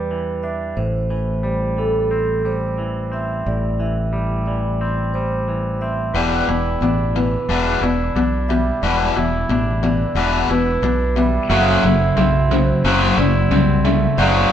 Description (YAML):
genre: rock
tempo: 89 BPM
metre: 4/4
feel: straight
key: E minor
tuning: A4 = 440 Hz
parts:
  - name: twangy electric guitar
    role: arpeggios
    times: 0.0-14.5 s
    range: E2 to E4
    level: -26 LUFS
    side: equal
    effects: none
  - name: vibraphone with medium mallets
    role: arpeggios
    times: 0.0-14.5 s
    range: A4 to E5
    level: -24 LUFS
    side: right 3 dB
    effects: none
  - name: modern bright fingered electric bass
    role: bass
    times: 0.0-14.5 s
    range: E1 to E2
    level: -22 LUFS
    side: equal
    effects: none
  - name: pedal steel guitar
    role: sustained chords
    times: 6.1-14.5 s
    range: E4 to G5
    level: -30 LUFS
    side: right 2 dB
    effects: none
  - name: biting overdriven guitar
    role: riff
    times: 6.1-14.5 s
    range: E2 to F#3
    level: -19 LUFS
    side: left 4 dB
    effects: none
  - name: tight distorted guitar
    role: riff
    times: 11.5-14.5 s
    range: F#2 to F#3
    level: -19 LUFS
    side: right 3 dB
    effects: distortion
room: wet stone room reverb, RT60 1.3 s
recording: band playing live in one room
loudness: -16 LUFS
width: side -9 dB against mid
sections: 0.0-6.1 A section; 6.1-14.5 B section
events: build-up 6.1-14.5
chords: 0.0 Em7; 0.8 Am7; 6.1 Em7; 11.5 F#m7b5